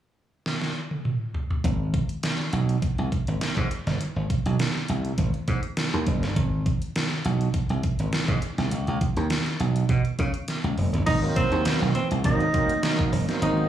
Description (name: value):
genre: funk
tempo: 102 BPM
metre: 4/4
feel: straight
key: Ab mixolydian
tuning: A4 = 442 Hz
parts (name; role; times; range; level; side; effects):
- pop drum kit; drums; 0.5-13.6 s; crash cymbal, hi-hat, kick drum, snare drum, toms; -26 LUFS; right 1 dB; overdrive
- slap bass; bass; 1.6-13.6 s; Gb1 to Db3; -24 LUFS; right 1 dB; none
- breathy tenor saxophone; melody; 11.1-13.7 s; Cb4 to Eb4; -26 LUFS; right 1 dB; slapback echo
- congas; percussion; 11.1-13.7 s; none; -34 LUFS; right 6 dB; none
- overdriven tonewheel organ; stabs; 11.2-13.7 s; Eb3 to Eb4; -29 LUFS; right 3 dB; slow rotary speaker, slapback echo
room: light reverb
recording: live gig heard through the venue's PA, club reverb, studio ambience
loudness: -23 LUFS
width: side -11 dB against mid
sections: 0.0-1.6 A section; 1.6-11.1 B section; 11.1-13.7 C section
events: drum fill 0.5-1.6, 10.5-11.1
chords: 0.0 N.C.; 1.6 Ab; 8.7 N.C.; 11.1 Ab9